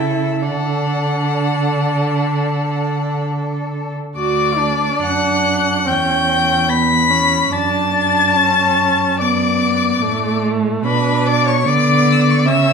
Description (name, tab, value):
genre	classical, slow romantic movement for string quartet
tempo	60-74 BPM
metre	4/4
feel	rubato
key	D major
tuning	A4 = 438 Hz
part	rich violin	melody	0.0-12.7 s	E5 to B6	-19 LUFS	left 7 dB	none
part	rich violin	second line	0.0-12.7 s	A4 to B5	-20 LUFS	left 2 dB	none
part	warm viola	accompaniment	0.0-12.7 s	A3 to F#4	-20 LUFS	right 2 dB	none
part	warm cello	bass	0.0-12.7 s	D2 to D3	-20 LUFS	right 3 dB	none
room	wet recital hall reverb, RT60 1.3 s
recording	minimal, uncompressed stereo recording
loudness	-14 LUFS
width	side -5 dB against mid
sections	0.0-4.2 A section; 4.2-12.7 A section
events	none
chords	0.4 D; 5.9 Em6; 7.5 D/F#; 10.8 Bm